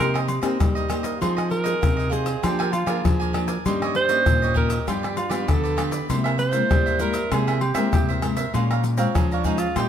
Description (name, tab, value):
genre	samba and choro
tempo	98 BPM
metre	4/4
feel	straight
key	unclear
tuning	A4 = 443 Hz
part	breathy alto saxophone	melody	0.0-9.9 s	C4 to C5	-25 LUFS	right 4 dB	none
part	cavaquinho	accompaniment	0.0-9.9 s	D4 to Bb5	-30 LUFS	right 7 dB	none
part	nylon-string guitar	accompaniment	0.0-9.9 s	G2 to Ab4	-29 LUFS	left 7 dB	none
part	nylon-string guitar	bass	0.0-9.9 s	Bb2 to C4	-25 LUFS	right 1 dB	none
part	egg shaker, pandeiro, tamborim, agogo bells and surdo	percussion	0.2-9.9 s	none	-24 LUFS	left 2 dB	none
room	moderate large studio reverb, RT60 1.4 s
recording	close, detailed microphones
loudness	-20 LUFS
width	side -9 dB against mid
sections	0.0-9.9 A section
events	alto saxophone solo 0.0-9.9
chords	0.0 Cm7; 1.2 Fm7; 2.4 Bb7/F; 3.7 Eb7/G; 4.9 G7; 6.1 C7b13; 8.5 Bbm7